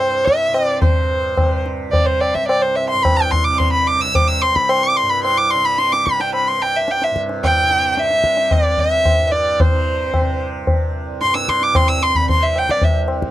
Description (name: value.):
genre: indian classical, Hindustani.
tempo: 110 BPM.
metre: 4/4.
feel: straight.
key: C raga hamsadhwani.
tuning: A4 = 441 Hz.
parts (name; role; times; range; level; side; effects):
warm violin; melody; 0.0-13.0 s; C5 to E6; -16 LUFS; equal; none.
tanpura; drone; 0.0-13.3 s; C2 to C3; -26 LUFS; right 4 dB; none.
tabla; percussion; 0.3-13.3 s; none; -18 LUFS; left 1 dB; none.
room: little or no reverb.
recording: dry, close 1970s-style studio recording.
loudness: -14 LUFS.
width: side -13 dB against mid.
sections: 0.8-13.3 A section.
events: speeding up 0.0-13.3.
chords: none.